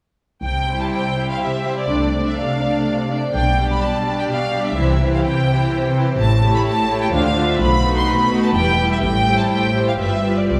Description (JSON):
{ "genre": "quick classical-period movement for string orchestra", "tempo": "126 BPM", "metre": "3/4", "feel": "rubato", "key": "C major", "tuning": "A4 = 441 Hz", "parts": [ { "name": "rich studio violin section", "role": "melody", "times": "0.4-10.6 s", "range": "D5 to C6", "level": "-24 LUFS", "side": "equal", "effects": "none" }, { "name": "rich studio cello section", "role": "bass", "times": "0.4-10.6 s", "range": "E2 to D3", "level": "-24 LUFS", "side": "equal", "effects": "none" }, { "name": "rich studio double bass section", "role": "bass", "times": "0.4-10.6 s", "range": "E1 to D2", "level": "-26 LUFS", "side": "equal", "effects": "none" }, { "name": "warm studio violin section", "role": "second line", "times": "0.7-10.5 s", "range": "D4 to D5", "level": "-26 LUFS", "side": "equal", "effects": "none" }, { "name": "rich studio viola section", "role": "accompaniment", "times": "0.7-10.5 s", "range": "E3 to F4", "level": "-25 LUFS", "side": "equal", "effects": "none" } ], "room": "wet concert hall reverb, RT60 2.0 s", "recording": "heard from further back in the room", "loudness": "-18 LUFS", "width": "mono", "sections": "0.4-10.6 A section", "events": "none", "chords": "0.4 C; 1.9 Dm7/C; 3.3 G/B; 4.8 C; 6.2 A7; 7.1 Dm7; 7.6 B7; 8.6 Em; 9.0 Am7; 10.0 G7" }